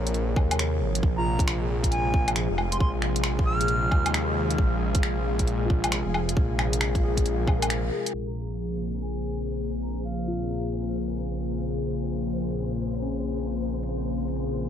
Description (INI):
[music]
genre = future garage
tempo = 135 BPM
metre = 4/4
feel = swing 64% on 16ths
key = Bb minor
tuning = A4 = 436 Hz
[part]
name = muted felt-like synth keys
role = accompaniment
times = 0.0-14.7 s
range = Db4 to Db5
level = -35 LUFS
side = left 2 dB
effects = chorus, sidechain pumping, tape echo
[part]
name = airy breathy pad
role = sustained chords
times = 0.0-14.7 s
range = C3 to Ab4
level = -30 LUFS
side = left 1 dB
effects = chorus, phaser, sidechain pumping
[part]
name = swelling detuned saw bass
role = bass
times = 0.0-14.7 s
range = F1 to Eb2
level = -29 LUFS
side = equal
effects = sidechain pumping
[part]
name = garage drum kit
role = drums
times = 0.1-14.5 s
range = finger snaps, hi-hat, woodblock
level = -30 LUFS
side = left 1 dB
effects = none
[part]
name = electronic kick drum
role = drums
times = 0.4-7.6 s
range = none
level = -24 LUFS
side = equal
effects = none
[part]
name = wind-like tuned noise texture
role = texture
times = 1.8-14.7 s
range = C4 to F5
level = -39 LUFS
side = equal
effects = built-in reverb
[part]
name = bright reedy silver concert flute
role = melody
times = 1.2-4.1, 8.3-10.7 s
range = F5 to F6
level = -33 LUFS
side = right 1 dB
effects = vintage 12-bit sampler grit, tape echo
[sound]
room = light reverb, digital ambience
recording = low-pass filter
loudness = -24 LUFS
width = side -9 dB against mid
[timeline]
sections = 0.0-8.1 A section; 8.1-14.7 B section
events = break 7.7-8.1; band accent 7.7; filter sweep 8.1-14.7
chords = 0.0 Bbm7; 1.0 Fm; 8.1 Bbm7